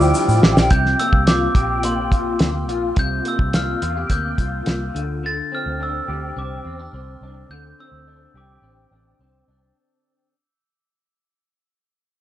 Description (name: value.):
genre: indie pop, bedroom pop.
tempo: 106 BPM.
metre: 4/4.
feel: straight.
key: D minor.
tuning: A4 = 440 Hz.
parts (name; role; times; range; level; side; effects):
glockenspiel with soft plastic mallets; melody; 0.0-9.2 s; C6 to A6; -25 LUFS; right 1 dB; lush chorus.
bright upright piano; accompaniment; 0.0-0.7 s; G3 to C5; -23 LUFS; right 3 dB; cassette tape.
electric guitar through a small old amp; accompaniment; 0.0-10.3 s; C3 to G4; -24 LUFS; left 2 dB; ensemble chorus, vibrato effect.
vintage muted fingered electric bass; bass; 0.0-9.7 s; A1 to A2; -24 LUFS; equal; none.
tube shaker; percussion; 0.0-0.7 s; none; -32 LUFS; left 3 dB; none.
cloth-damped thuddy drum kit; drums; 0.4-5.1 s; hi-hat, kick drum, snare drum; -17 LUFS; equal; none.
room: moderate studio reverb, RT60 0.6 s.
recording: nothing above 10.5 kHz.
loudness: -17 LUFS.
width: side -13 dB against mid.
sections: 0.7-9.8 A section.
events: drum fill 0.0-0.7; fade-out 0.7-9.8.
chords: 0.0 Dm11; 0.7 C7sus4; 4.9 D9sus4.